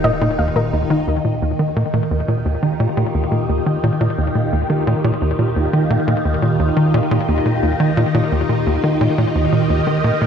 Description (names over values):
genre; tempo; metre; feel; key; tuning
ambient, sequencer-driven space music; 87 BPM; 4/4; straight; Eb major; A4 = 439 Hz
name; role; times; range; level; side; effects
phased string machine; sustained chords; 0.0-10.3 s; Eb3 to G4; -19 LUFS; equal; ensemble chorus, phaser
soft round pluck; arpeggios; 0.0-1.0 s; Eb4 to F5; -23 LUFS; left 2 dB; chorus, auto-pan, ping-pong delay
tight sequencer bass; riff; 0.0-10.3 s; Eb2 to Eb3; -17 LUFS; equal; analog chorus, ping-pong delay
warm sub bass; bass; 0.0-1.0 s; Eb1; -33 LUFS; equal; none
room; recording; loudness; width
moderate plate reverb, RT60 2.4 s; none; -15 LUFS; side -7 dB against mid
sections
0.0-1.1 A section; 1.1-10.3 B section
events
filter sweep on synth arpeggio sound 0.0-1.1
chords
0.0 Ebadd9